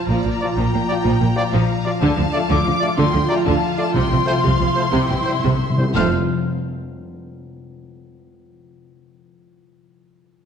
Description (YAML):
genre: cinematic, heroic adventure film score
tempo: 123 BPM (dotted quarters)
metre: 12/8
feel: uneven beats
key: F major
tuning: A4 = 439 Hz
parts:
  - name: warm symphonic violin section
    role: melody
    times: 0.0-6.1 s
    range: F5 to D6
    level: -28 LUFS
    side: left 6 dB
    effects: none
  - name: mellow hollow concert flute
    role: second line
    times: 0.0-6.1 s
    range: A5 to F6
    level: -27 LUFS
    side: left 2 dB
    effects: none
  - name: rich symphonic violin section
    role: second line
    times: 0.0-6.1 s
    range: A4 to G5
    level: -31 LUFS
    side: left 3 dB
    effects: none
  - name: rich studio viola section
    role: accompaniment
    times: 0.0-6.2 s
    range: C3 to F4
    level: -23 LUFS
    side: right 2 dB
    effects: none
  - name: concert harp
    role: arpeggios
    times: 0.0-8.0 s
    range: F2 to D6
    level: -27 LUFS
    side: left 9 dB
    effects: none
  - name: rich studio double bass section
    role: bass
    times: 0.1-6.2 s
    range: F1 to D2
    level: -23 LUFS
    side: right 3 dB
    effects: none
  - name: rich symphonic cello section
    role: bass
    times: 0.1-6.2 s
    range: F2 to D3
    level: -24 LUFS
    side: right 2 dB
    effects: none
  - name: clear French horn section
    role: sustained chords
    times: 0.4-6.1 s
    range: F3 to F4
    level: -28 LUFS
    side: left 3 dB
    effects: none
  - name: warm trumpet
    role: stabs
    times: 0.4-6.1 s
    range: C5 to D5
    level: -28 LUFS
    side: right 2 dB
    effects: none
  - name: timpani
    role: percussion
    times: 3.9-6.1 s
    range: F2 to C3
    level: -24 LUFS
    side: equal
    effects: none
room: wet scoring stage reverb, RT60 1.6 s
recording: dark, warm production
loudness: -16 LUFS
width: side -7 dB against mid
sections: 0.0-6.0 A section; 6.0-8.0 B section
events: slowing down 2.7-6.0; timpani fill 4.9-6.0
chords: 0.1 Bb; 2.0 Dm; 3.9 F/C; 4.9 C; 6.0 F